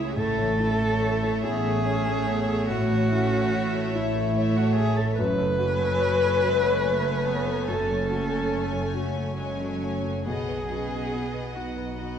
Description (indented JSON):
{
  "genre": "cinematic",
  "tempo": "48 BPM (dotted quarters)",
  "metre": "6/8",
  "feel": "rubato",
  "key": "unclear",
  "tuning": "A4 = 440 Hz",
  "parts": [
    { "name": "dark cello", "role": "melody", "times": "0.0-12.2 s", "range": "C#4 to B4", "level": "-30 LUFS", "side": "right 2 dB", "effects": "none" },
    { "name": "warm studio violin section", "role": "melody", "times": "0.0-12.2 s", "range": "E5 to G#5", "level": "-39 LUFS", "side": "left 3 dB", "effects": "none" },
    { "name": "dark clarinet", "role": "second line", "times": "0.0-12.2 s", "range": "G#3 to D#4", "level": "-35 LUFS", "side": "left 2 dB", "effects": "none" },
    { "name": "dark studio violin section", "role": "second line", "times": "0.0-12.2 s", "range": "C#5 to D#5", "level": "-37 LUFS", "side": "left 2 dB", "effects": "none" },
    { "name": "clear symphonic viola section", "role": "accompaniment", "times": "0.0-12.2 s", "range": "F#3 to G#4", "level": "-36 LUFS", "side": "right 2 dB", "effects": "none" },
    { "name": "felt-muted upright piano", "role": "accompaniment", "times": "0.0-12.2 s", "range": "B1 to C#5", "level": "-34 LUFS", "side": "left 1 dB", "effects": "none" },
    { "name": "mellow French horn section", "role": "sustained chords", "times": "0.0-12.2 s", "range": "C#4 to B4", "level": "-29 LUFS", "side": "left 4 dB", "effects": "none" },
    { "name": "concert harp", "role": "arpeggios", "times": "0.0-12.2 s", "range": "F#2 to C#6", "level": "-35 LUFS", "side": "left 6 dB", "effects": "none" },
    { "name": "dark studio cello section", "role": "bass", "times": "0.2-12.2 s", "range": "F#2 to B2", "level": "-31 LUFS", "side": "right 2 dB", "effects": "none" },
    { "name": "warm studio double bass section", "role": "bass", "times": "0.2-12.2 s", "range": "F#1 to B1", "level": "-31 LUFS", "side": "right 4 dB", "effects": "none" }
  ],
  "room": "moderate scoring stage reverb, RT60 1.5 s",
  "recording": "dark, warm production",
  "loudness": "-22 LUFS",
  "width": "side -8 dB against mid",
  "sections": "0.0-12.2 A section",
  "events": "none",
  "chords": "0.2 A; 5.2 F#madd9; 10.3 B"
}